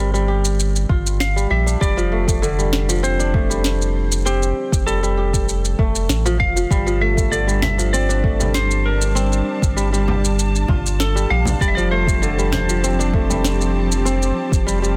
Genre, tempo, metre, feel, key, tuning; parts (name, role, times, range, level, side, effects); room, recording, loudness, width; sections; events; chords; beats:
organic downtempo; 98 BPM; 4/4; straight; A4 = 445 Hz
clean lap steel guitar; melody; 0.0-15.0 s; G4 to F5; -28 LUFS; equal; delay
kora; arpeggios; 0.0-15.0 s; D3 to G4; -25 LUFS; equal; delay
warm sub bass; bass; 0.0-15.0 s; F1 to Bb1; -23 LUFS; equal; sidechain pumping
electronic shaker and snare drum; drums; 0.1-15.0 s; -27 LUFS; equal; studio ambience
electronic kick drum; drums; 0.9-14.6 s; -23 LUFS; equal; studio ambience
dark studio string section; sustained chords; 6.7-15.0 s; F3 to A5; -28 LUFS; equal; sidechain pumping
frame drum; percussion; 7.6-13.4 s; -29 LUFS; equal
studio reverb; dense, heavily limited modern master; -18 LUFS; mono
0.0-15.0 A section
0.0 Gm7; 1.8 Fadd9; 6.7 Gm7; 11.6 Fadd9
0.59 1.20 | 1.81 2.42 3.04 3.65 | 4.26 4.87 5.48 6.10 | 6.71 7.32 7.93 8.54 | 9.16 9.77 10.38 10.99 | 11.61 12.22 12.83 13.44 | 14.05 14.67